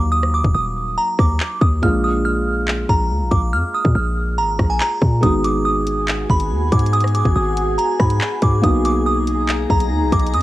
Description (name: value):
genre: hip hop, drill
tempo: 141 BPM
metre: 4/4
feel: half-time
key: unclear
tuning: A4 = 440 Hz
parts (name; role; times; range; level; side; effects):
- glassy synth bell; melody; 0.0-10.4 s; Ab5 to F6; -21 LUFS; right 1 dB; chorus, tremolo, cassette tape, analog delay
- felt-muted upright piano; accompaniment; 0.0-10.4 s; Gb3 to Gb4; -24 LUFS; right 1 dB; cassette tape
- hard-hitting 808-style bass; bass; 0.0-10.4 s; Eb1 to Bb2; -19 LUFS; equal; none
- drill drum kit; drums; 0.2-10.4 s; handclaps, hi-hat, kick drum, rim click; -20 LUFS; equal; none
- glassy FM pad; sustained chords; 6.0-10.4 s; D#4 to A#5; -24 LUFS; left 2 dB; ensemble chorus, built-in reverb, cassette tape
room: digital ambience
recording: home recording on cassette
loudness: -15 LUFS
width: side -16 dB against mid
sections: 0.0-10.4 A section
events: break 0.0-5.2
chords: 0.0 Ebm; 1.8 Bb7; 5.2 Abm7; 8.6 Bmaj7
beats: | 0.12 0.55 0.98 1.40 | 1.83 2.25 2.68 3.10 | 3.53 3.95 4.38 4.80 | 5.23 5.66 6.08 6.51 | 6.93 7.36 7.78 8.21 | 8.63 9.06 9.49 9.91 | 10.34